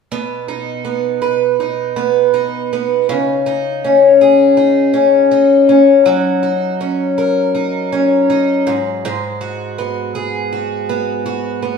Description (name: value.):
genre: pop.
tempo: 81 BPM.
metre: 4/4.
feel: straight.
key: B major.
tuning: A4 = 440 Hz.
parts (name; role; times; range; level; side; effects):
picked twelve-string acoustic guitar; accompaniment; 0.1-11.8 s; G#2 to B4; -12 LUFS; left 1 dB; none.
room: wet stone room reverb, RT60 1.2 s.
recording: band playing live in one room.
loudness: -12 LUFS.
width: side -5 dB against mid.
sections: 0.1-11.8 A section.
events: none.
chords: 0.1 B; 3.1 C#sus2; 6.1 F#6; 8.7 G#m7.